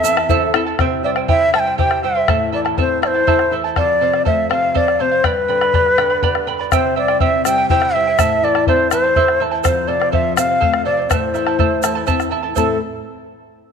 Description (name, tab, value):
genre	andean folk, Andean ensemble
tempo	82 BPM (dotted quarters)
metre	6/8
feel	straight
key	A minor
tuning	A4 = 439 Hz
part	mellow large quena	melody	0.0-12.8 s	A4 to A5	-17 LUFS	equal	none
part	charango	accompaniment	0.0-12.8 s	E4 to B5	-21 LUFS	right 12 dB	none
part	nylon-string guitar	accompaniment	0.0-12.8 s	E2 to A4	-24 LUFS	left 9 dB	none
part	egg shaker	percussion	0.0-0.4, 6.7-12.8 s	none	-28 LUFS	right 16 dB	none
part	bombo	percussion	0.2-12.8 s	none	-20 LUFS	left 4 dB	none
room	moderate echo chamber reverb, RT60 2.1 s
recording	1960s-style stereo with parts hard left and right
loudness	-14 LUFS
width	side -6 dB against mid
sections	0.8-12.6 A section; 12.6-13.7 B section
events	speeding up 0.0-13.7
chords	0.0 Am; 0.8 C; 2.3 Am; 3.8 F; 5.2 G; 6.7 C; 8.2 Am; 9.6 F; 11.1 Am